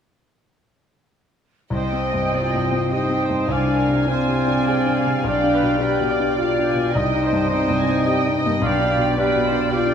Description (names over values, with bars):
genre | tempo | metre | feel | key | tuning
classical, romantic movement for piano and orchestra | 104 BPM | 3/4 | uneven beats, rubato | C minor | A4 = 439 Hz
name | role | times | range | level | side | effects
clear grand piano | melody | 1.7-9.9 s | B1 to Ab4 | -23 LUFS | left 2 dB | none
rich studio violin section | melody | 1.7-9.9 s | F5 to B5 | -33 LUFS | left 2 dB | none
bright clarinet | second line | 1.7-9.9 s | C5 to Eb5 | -30 LUFS | right 1 dB | none
dark studio violin section | second line | 1.7-9.9 s | C5 to Ab5 | -31 LUFS | equal | none
flute section | second line | 1.7-9.9 s | G5 to Ab5 | -29 LUFS | right 3 dB | none
mellow bassoon | accompaniment | 1.7-9.9 s | G3 to C4 | -27 LUFS | right 4 dB | none
warm studio viola section | accompaniment | 1.7-9.9 s | Bb4 to Eb5 | -29 LUFS | right 4 dB | none
mellow French horn section | sustained chords | 1.7-9.9 s | Bb3 to Ab4 | -24 LUFS | left 4 dB | none
dark studio cello section | bass | 1.7-9.9 s | B2 to C3 | -28 LUFS | right 4 dB | none
warm oboe | second line | 1.8-9.9 s | Eb5 to F5 | -28 LUFS | right 2 dB | none
room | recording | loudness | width
moderate concert hall reverb, RT60 2.4 s | close, detailed microphones | -17 LUFS | side -8 dB against mid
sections
1.7-9.9 A section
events
none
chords
1.7 Cm; 3.5 Dm7b5/C; 5.3 G7/B; 7.0 Cm; 8.6 G7/B